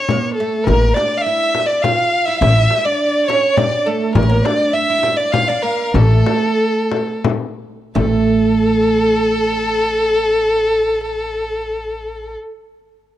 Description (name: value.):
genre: Arabic maqam ensemble.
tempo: 83-103 BPM.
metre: 3/4.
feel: straight.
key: A maqam hijaz.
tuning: A4 = 442 Hz.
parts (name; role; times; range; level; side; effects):
warm violin; melody; 0.0-12.4 s; A4 to F5; -17 LUFS; equal; none.
oud; second line; 0.0-12.3 s; A3 to F4; -20 LUFS; right 5 dB; none.
frame drum; percussion; 0.1-8.3 s; none; -21 LUFS; left 5 dB; none.
warm studio violin section; second line; 0.7-12.4 s; A4 to F5; -23 LUFS; left 2 dB; none.
upright bass; bass; 0.7-12.3 s; A1; -18 LUFS; equal; none.
room: small room ambience.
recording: dry, close 1970s-style studio recording.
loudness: -14 LUFS.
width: side -12 dB against mid.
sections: 0.0-8.0 A section; 8.0-12.3 B section.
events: slowing down 4.2-8.0.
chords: none.